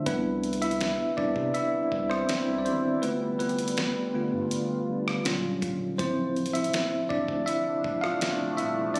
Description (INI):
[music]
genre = contemporary R&B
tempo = 81 BPM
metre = 4/4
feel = straight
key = unclear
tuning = A4 = 441 Hz
[part]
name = bell-like tine electric piano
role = accompaniment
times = 0.0-9.0 s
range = F3 to F5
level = -29 LUFS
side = equal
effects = none
[part]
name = deep dark ambient pad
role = sustained chords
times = 0.0-9.0 s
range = C3 to F4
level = -40 LUFS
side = equal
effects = chorus, built-in reverb
[part]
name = saturated sub bass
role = bass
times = 0.1-9.0 s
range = D1 to C3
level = -40 LUFS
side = equal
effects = none
[part]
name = dusty soul sampler-style drum kit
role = drums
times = 0.1-9.0 s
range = hi-hat, kick drum, rim click, snare drum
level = -36 LUFS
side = equal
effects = none
[sound]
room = light reverb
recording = recorded on a phone in the room, studio reverb, compression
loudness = -28 LUFS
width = mono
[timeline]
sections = 0.1-9.0 A section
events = tine electric piano solo 0.1-9.0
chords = 0.1 Cmaj7; 3.0 G7; 5.2 Ebm7; 6.0 Dm7